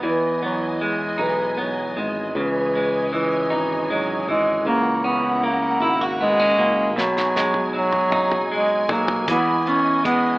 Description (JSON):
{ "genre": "six-eight pop ballad", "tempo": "52 BPM (dotted quarters)", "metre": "6/8", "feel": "straight", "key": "unclear", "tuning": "A4 = 440 Hz", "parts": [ { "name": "warm bass clarinet", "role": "melody", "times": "0.0-10.4 s", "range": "E3 to C#4", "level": "-21 LUFS", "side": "equal", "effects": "digital delay" }, { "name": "clean electric guitar", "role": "accompaniment", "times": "0.0-10.4 s", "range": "B2 to F#4", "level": "-23 LUFS", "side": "equal", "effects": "none" }, { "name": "warm studio string section", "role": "sustained chords", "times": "0.0-10.4 s", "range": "E3 to G#5", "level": "-29 LUFS", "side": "equal", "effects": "none" }, { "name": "fingered electric bass", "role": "bass", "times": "0.0-10.4 s", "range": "F#1 to E2", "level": "-32 LUFS", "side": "equal", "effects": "none" }, { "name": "damped 70s drum kit", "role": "drums", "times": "7.0-10.2 s", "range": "hi-hat, kick drum, snare drum, toms", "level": "-27 LUFS", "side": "equal", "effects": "none" } ], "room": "moderate studio ambience, RT60 0.5 s", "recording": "rough home demo mix, AM radio sound", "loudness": "-18 LUFS", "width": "side -21 dB against mid", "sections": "0.0-10.4 A section", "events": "drum fill 7.0-9.3", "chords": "0.0 Emaj7; 2.4 C#madd9; 4.7 F#7/C#; 7.0 B6; 9.3 Emaj7", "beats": "| 0.03 1.19 | 2.35 3.50 | 4.65 5.80 | 6.96 8.12 | 9.28" }